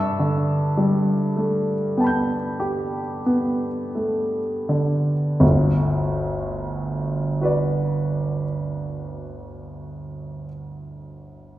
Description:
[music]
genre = classical, impressionist solo piano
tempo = 26-36 BPM (dotted quarters)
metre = 9/8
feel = rubato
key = G lydian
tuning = A4 = 438 Hz
[part]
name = warm grand piano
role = solo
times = 0.0-11.6 s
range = G1 to G6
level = -21 LUFS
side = equal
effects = none
[sound]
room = wet recital hall reverb, RT60 1.6 s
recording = heard from further back in the room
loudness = -20 LUFS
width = side -14 dB against mid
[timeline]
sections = 0.0-5.4 A section; 5.4-11.4 B section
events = slowing down 0.0-5.4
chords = 0.0 G69; 5.4 Gmaj7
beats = 1.37 3.26 | 5.41 7.42 9.38

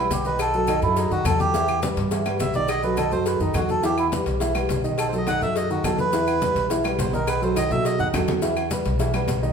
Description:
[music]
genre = latin, salsa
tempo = 209 BPM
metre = 4/4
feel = straight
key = E harmonic minor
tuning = A4 = 441 Hz
[part]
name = melodica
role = melody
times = 0.0-8.1 s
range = D#4 to F#5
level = -25 LUFS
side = right 1 dB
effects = none
[part]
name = dark concert grand piano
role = accompaniment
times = 0.0-9.5 s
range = D#3 to E5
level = -24 LUFS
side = right 1 dB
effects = none
[part]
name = upright bass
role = bass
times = 0.0-9.5 s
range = B1 to B2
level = -28 LUFS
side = left 1 dB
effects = none
[part]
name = congas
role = percussion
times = 0.1-9.4 s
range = none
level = -33 LUFS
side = left 3 dB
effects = none
[part]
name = cowbell and bongos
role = percussion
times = 0.1-9.4 s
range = none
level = -32 LUFS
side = left 2 dB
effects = none
[part]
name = maracas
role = percussion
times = 0.1-9.5 s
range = none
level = -38 LUFS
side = left 4 dB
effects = none
[part]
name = timbales and agogo bells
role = percussion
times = 0.1-9.4 s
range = none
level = -33 LUFS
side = right 8 dB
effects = none
[part]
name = claves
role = percussion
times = 0.4-9.3 s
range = none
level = -37 LUFS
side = left 4 dB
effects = none
[sound]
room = wet large studio reverb, RT60 1.2 s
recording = band playing live in one room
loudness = -20 LUFS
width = side -6 dB against mid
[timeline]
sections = 0.0-8.4 A section; 8.4-9.5 B section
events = melodica solo 0.0-8.4; drum fill 7.6-8.4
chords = 0.4 B7; 1.5 Em; 2.7 B7; 3.8 Em; 5.0 B7; 6.1 Em; 7.3 B7; 8.4 Em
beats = 0.11 | 0.40 0.68 0.97 1.26 | 1.54 1.83 2.12 2.40 | 2.69 2.98 3.26 3.55 | 3.84 4.12 4.41 4.70 | 4.98 5.27 5.55 5.84 | 6.13 6.42 6.70 6.99 | 7.27 7.56 7.85 8.13 | 8.42 8.71 8.99 9.28

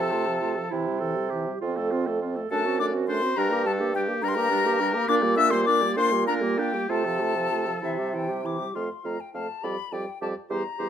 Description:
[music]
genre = quick classical-period movement for wind quintet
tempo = 63-71 BPM (dotted quarters)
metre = 6/8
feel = rubato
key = F major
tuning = A4 = 440 Hz
[part]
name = silver concert flute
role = melody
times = 0.0-10.9 s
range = E5 to E6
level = -28 LUFS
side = left 7 dB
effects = none
[part]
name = clear oboe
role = second line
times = 0.0-10.9 s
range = G4 to F5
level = -31 LUFS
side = left 3 dB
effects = none
[part]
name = clear clarinet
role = accompaniment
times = 0.0-10.9 s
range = Bb3 to A4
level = -31 LUFS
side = right 10 dB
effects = none
[part]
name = mellow French horn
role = accompaniment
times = 0.0-10.9 s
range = E3 to C4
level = -31 LUFS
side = left 1 dB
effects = none
[part]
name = mellow bassoon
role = bass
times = 0.0-10.9 s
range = E2 to C3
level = -28 LUFS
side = right 2 dB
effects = none
[sound]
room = light reverb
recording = none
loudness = -23 LUFS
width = side -9 dB against mid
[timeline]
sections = 0.0-8.8 A section; 8.8-10.9 B section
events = none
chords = 0.0 F/C; 0.7 C; 1.6 F; 2.5 D7/F#; 3.4 Gm; 5.1 Gm/Bb; 6.9 F/C; 7.8 C; 8.8 F; 9.6 G5/F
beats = 0.72 | 1.62 2.51 | 3.38 4.23 | 5.08 5.96 | 6.89 7.83 | 8.76 9.64 | 10.51

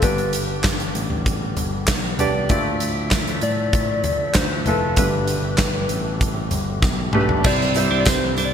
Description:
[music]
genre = piano-driven pop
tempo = 97 BPM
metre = 4/4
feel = straight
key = unclear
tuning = A4 = 435 Hz
[part]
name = soft struck synth lead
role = melody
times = 0.0-8.5 s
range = B4 to D5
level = -25 LUFS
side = left 4 dB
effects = chorus, tremolo, ping-pong delay
[part]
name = clear baby grand piano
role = accompaniment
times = 0.0-8.5 s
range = G2 to D5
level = -24 LUFS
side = right 1 dB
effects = wide subtle chorus
[part]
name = tonewheel organ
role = sustained chords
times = 0.0-8.5 s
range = B2 to E5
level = -31 LUFS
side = equal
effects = overdrive, fast rotary speaker
[part]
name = picked electric bass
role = bass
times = 0.0-8.5 s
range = F1 to A2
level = -26 LUFS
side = equal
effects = none
[part]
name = huge arena drum kit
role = drums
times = 0.0-8.5 s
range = crash cymbal, handclaps, hi-hat, kick drum, snare drum, toms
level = -21 LUFS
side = equal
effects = gated reverb
[part]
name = clean electric guitar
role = riff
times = 7.4-8.5 s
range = C4 to D4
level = -25 LUFS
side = right 7 dB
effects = wide subtle chorus
[part]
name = tambourine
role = percussion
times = 7.4-8.5 s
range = none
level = -35 LUFS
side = left 5 dB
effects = none
[sound]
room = light reverb, studio ambience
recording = bright 1980s-style digital production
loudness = -18 LUFS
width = side -8 dB against mid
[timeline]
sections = 0.0-7.4 A section; 7.4-8.5 B section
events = drum fill 6.8-7.4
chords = 0.0 G; 2.5 Dmadd9; 5.0 Gadd9; 7.4 C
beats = | 0.03 0.65 1.27 1.89 | 2.50 3.12 3.74 4.36 | 4.97 5.59 6.21 6.83 | 7.44 8.06

